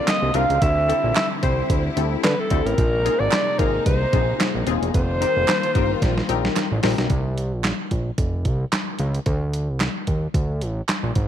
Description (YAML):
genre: early-eighties boogie funk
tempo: 111 BPM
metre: 4/4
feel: swing 56% on 16ths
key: C minor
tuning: A4 = 440 Hz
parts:
  - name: breathy alto saxophone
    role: melody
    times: 0.0-6.5 s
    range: A4 to F5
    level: -22 LUFS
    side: right 1 dB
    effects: slapback echo
  - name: funky polysynth comp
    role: accompaniment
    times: 0.0-7.1 s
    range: C4 to C5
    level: -27 LUFS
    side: left 13 dB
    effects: chorus
  - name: rich studio string section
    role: sustained chords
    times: 0.0-7.1 s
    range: C3 to F4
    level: -30 LUFS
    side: left 1 dB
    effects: none
  - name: clean 12-bit digital drum machine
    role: drums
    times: 0.1-11.3 s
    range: handclaps, hi-hat, kick drum, snare drum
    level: -23 LUFS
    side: equal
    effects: none
  - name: group handclap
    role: percussion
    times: 0.1-11.0 s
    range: none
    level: -32 LUFS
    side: right 14 dB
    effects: none
  - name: fat analog bass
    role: bass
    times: 0.2-11.3 s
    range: Eb1 to D3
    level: -23 LUFS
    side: right 1 dB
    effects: none
room: light reverb, small room reverb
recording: 1960s-style stereo with parts hard left and right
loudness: -19 LUFS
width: side -10 dB against mid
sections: 0.0-7.1 A section; 7.1-11.3 B section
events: drum fill 6.0-7.1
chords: 0.0 C9sus4; 0.6 D9sus4; 2.8 Bb9sus4; 4.9 F9sus4; 7.1 C7sus4; 9.3 D5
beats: 0.08 | 0.62 1.16 1.70 2.24 | 2.78 3.32 3.86 4.40 | 4.94 5.48 6.02 6.56 | 7.11 7.64 8.19 8.73 | 9.27 9.81 10.35 10.89